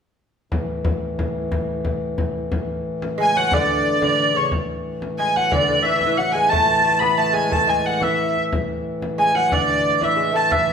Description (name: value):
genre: medieval dance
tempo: 120 BPM (dotted quarters)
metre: 6/8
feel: straight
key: unclear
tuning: A4 = 438 Hz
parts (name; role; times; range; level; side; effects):
- pedal harmonium; drone; 0.5-10.7 s; A2 to E3; -26 LUFS; left 1 dB; none
- frame drum; percussion; 0.5-10.7 s; none; -27 LUFS; left 1 dB; none
- rich hurdy-gurdy; melody; 3.2-10.7 s; C#5 to B5; -18 LUFS; right 1 dB; none
- lute; second line; 3.2-10.7 s; C#3 to B3; -25 LUFS; right 3 dB; none
- mellow tenor recorder; second line; 3.2-10.7 s; C#5 to B5; -25 LUFS; left 4 dB; none
room: wet stone room reverb, RT60 1.3 s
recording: band playing live in one room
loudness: -18 LUFS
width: side -6 dB against mid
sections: 0.5-2.5 A section; 2.5-10.5 B section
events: none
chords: none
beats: | 0.52 1.02 | 1.52 2.02 | 2.52 3.02 | 3.52 4.02 | 4.52 5.02 | 5.52 6.02 | 6.52 7.02 | 7.52 8.02 | 8.52 9.02 | 9.52 10.02 | 10.52